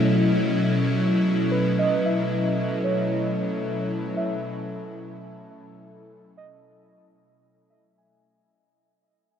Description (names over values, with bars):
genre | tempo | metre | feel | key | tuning
ambient | 68 BPM | 4/4 | straight | unclear | A4 = 441 Hz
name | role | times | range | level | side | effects
airy breathy pad | sustained chords | 0.0-8.1 s | B2 to E4 | -23 LUFS | equal | chorus
muted felt-like synth keys | arpeggios | 0.0-8.8 s | B4 to G#5 | -29 LUFS | right 2 dB | chorus, phaser, diffuse ambient delay
analog drone | drone | 0.0-8.2 s | A3 to A4 | -34 LUFS | left 4 dB | chorus
room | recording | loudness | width
moderate huge ambient reverb, RT60 9.4 s | none | -21 LUFS | side -8 dB against mid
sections
0.0-8.1 A section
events
fade-out 0.0-8.1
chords
0.0 Bsus4